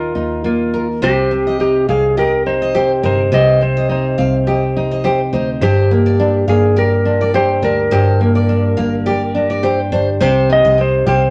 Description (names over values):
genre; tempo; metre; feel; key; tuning
acoustic pop; 104 BPM; 4/4; swing 55% on 16ths; unclear; A4 = 442 Hz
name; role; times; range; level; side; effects
clean lap steel guitar; melody; 0.0-11.3 s; F4 to Eb5; -19 LUFS; equal; none
nylon-string guitar; accompaniment; 0.0-11.3 s; G2 to Bb4; -19 LUFS; equal; none
vintage muted fingered electric bass; bass; 0.0-11.3 s; G1 to Eb2; -22 LUFS; equal; none
picked steel-string acoustic guitar; arpeggios; 1.0-11.2 s; Bb4 to F5; -24 LUFS; equal; none
room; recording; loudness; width
wet studio reverb, RT60 0.8 s; none; -15 LUFS; mono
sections
0.0-1.0 A section; 1.0-10.2 B section; 10.2-11.3 C section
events
none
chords
0.0 Ebsus2; 1.0 Cm; 5.6 Gm; 10.2 Cm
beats
0.45 | 1.02 1.60 2.17 2.75 | 3.32 3.90 4.47 5.04 | 5.62 6.19 6.76 7.34 | 7.91 8.49 9.06 9.63 | 10.21 10.78